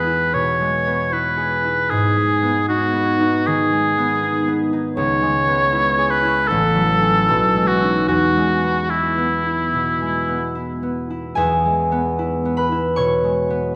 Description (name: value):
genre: classical, romantic duo for oboe and harp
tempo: 71-80 BPM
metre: 4/4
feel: rubato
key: E major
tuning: A4 = 440 Hz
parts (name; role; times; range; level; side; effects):
- warm oboe; melody; 0.0-10.5 s; E4 to C#5; -20 LUFS; equal; none
- concert harp; accompaniment; 0.0-13.8 s; A1 to C#6; -22 LUFS; equal; none
room: wet scoring stage reverb, RT60 1.9 s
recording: recorded in a church or concert hall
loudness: -19 LUFS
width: mono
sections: 0.0-11.4 A section; 11.4-13.8 A section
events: none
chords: 0.0 E; 1.9 G#m; 5.0 C#m7; 6.5 F#m7/A; 7.3 B13; 8.1 E